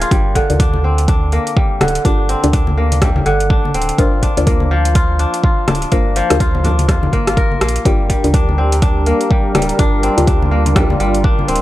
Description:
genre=afro house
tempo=124 BPM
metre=4/4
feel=swing 59% on 16ths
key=G minor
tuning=A4 = 440 Hz
part: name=kora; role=arpeggios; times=0.0-11.6 s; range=D3 to Bb4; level=-19 LUFS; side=left 1 dB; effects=vintage 12-bit sampler grit, sidechain pumping, analog delay
part: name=warm sub bass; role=bass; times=0.0-11.6 s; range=D1 to D2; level=-18 LUFS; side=equal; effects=sidechain pumping
part: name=deep house drum kit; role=drums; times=0.0-11.6 s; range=hi-hat, rim click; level=-22 LUFS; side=equal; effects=overdrive
part: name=deep mellow chord stab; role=stabs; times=0.1-11.6 s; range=D4 to D5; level=-22 LUFS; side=left 2 dB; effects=chorus, sidechain pumping, analog delay
part: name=electronic kick drum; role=drums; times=0.1-11.4 s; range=none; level=-15 LUFS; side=equal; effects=overdrive
part: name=congas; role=percussion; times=0.5-11.5 s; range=none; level=-21 LUFS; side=left 2 dB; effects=none
part: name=warm analog pad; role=sustained chords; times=7.9-11.6 s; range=G3 to Bb4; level=-20 LUFS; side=right 1 dB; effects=chorus, sidechain pumping
room=little or no reverb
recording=dry, gritty hardware recording, transformer saturation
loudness=-12 LUFS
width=side -15 dB against mid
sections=0.0-11.6 A section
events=filter sweep on synth stab 0.0-11.6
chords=0.1 Gm7

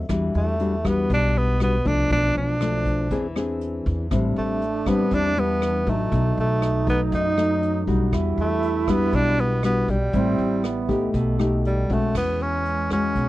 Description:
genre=bossa nova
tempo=120 BPM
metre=4/4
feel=straight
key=unclear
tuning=A4 = 440 Hz
part: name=nylon-string guitar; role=accompaniment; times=0.0-13.3 s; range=F#2 to G#4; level=-24 LUFS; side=left 3 dB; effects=none
part: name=upright bass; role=bass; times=0.0-13.3 s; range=A1 to F#2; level=-25 LUFS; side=equal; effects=none
part: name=vintage brush drum kit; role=drums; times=0.1-13.3 s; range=crash cymbal, hi-hat, kick drum, rim click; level=-31 LUFS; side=equal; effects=none
part: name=breathy tenor saxophone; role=melody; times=0.4-13.3 s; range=G3 to D#4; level=-24 LUFS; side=right 1 dB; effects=none
part: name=reedy wooden-headed alto flute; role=second line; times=4.1-13.3 s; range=G#3 to E4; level=-29 LUFS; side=right 8 dB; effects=none
room=little or no reverb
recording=dry, close 1970s-style studio recording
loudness=-20 LUFS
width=side -16 dB against mid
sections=0.0-12.1 A section; 12.1-13.3 B section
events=none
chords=0.1 Em9; 2.1 Bm7b5; 3.1 E7b13; 4.1 Am11; 6.1 B7; 8.1 Em9; 10.1 Am7; 11.1 B7b13; 12.1 E69

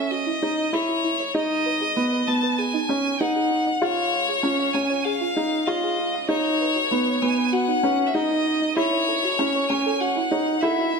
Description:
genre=piano and strings electronica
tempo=97 BPM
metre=4/4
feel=straight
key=unclear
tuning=A4 = 440 Hz
part: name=bright violin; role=melody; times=0.0-11.0 s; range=C#5 to A5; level=-24 LUFS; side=left 2 dB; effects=none
part: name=felt-muted upright piano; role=riff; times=0.0-11.0 s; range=B3 to E#4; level=-23 LUFS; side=right 1 dB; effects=tape echo
part: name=dark detuned saw bass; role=bass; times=0.0-11.0 s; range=F#1 to C#2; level=-44 LUFS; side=left 1 dB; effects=none
part: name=soft round pluck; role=arpeggios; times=0.1-11.0 s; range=D#4 to E#5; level=-30 LUFS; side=right 2 dB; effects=wide subtle chorus, tape echo
room=wet lush hall reverb, RT60 1.9 s, studio ambience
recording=none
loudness=-20 LUFS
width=side -4 dB against mid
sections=0.0-11.0 A section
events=build-up 0.0-11.0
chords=0.0 F#m7; 1.4 G#m; 3.8 C#; 6.3 Badd9; 8.8 F#m7

